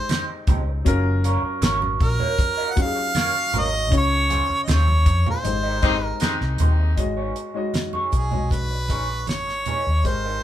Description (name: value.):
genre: lush 1970s-style soul.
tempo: 78 BPM.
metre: 4/4.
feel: straight.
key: Ab major.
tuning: A4 = 441 Hz.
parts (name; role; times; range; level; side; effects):
warm harmonica; melody; 0.0-10.4 s; G#4 to Gb5; -24 LUFS; right 1 dB; none.
dark baby grand piano; accompaniment; 0.0-10.4 s; Db3 to D#5; -29 LUFS; left 3 dB; none.
electric guitar through a small old amp; riff; 0.1-10.4 s; Ab3 to Eb5; -29 LUFS; right 4 dB; wah, spring reverb.
damped 70s drum kit; drums; 0.1-10.2 s; hi-hat, kick drum, snare drum; -22 LUFS; equal; none.
congas; percussion; 0.1-9.8 s; none; -31 LUFS; right 3 dB; none.
vintage muted fingered electric bass; bass; 0.5-10.4 s; Gb1 to F2; -22 LUFS; equal; none.
warm horn section; stabs; 5.8-6.9 s; C3 to Eb4; -26 LUFS; left 3 dB; none.
room: moderate studio reverb, RT60 0.6 s.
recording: band playing live in one room.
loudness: -19 LUFS.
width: side -12 dB against mid.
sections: 0.0-7.0 A section; 7.0-10.4 B section.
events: band accent 3.9-7.0.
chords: 0.0 Abmaj7; 0.9 Gbmaj7; 3.9 Dbmaj7; 5.4 Abmaj7; 7.0 B69/G#.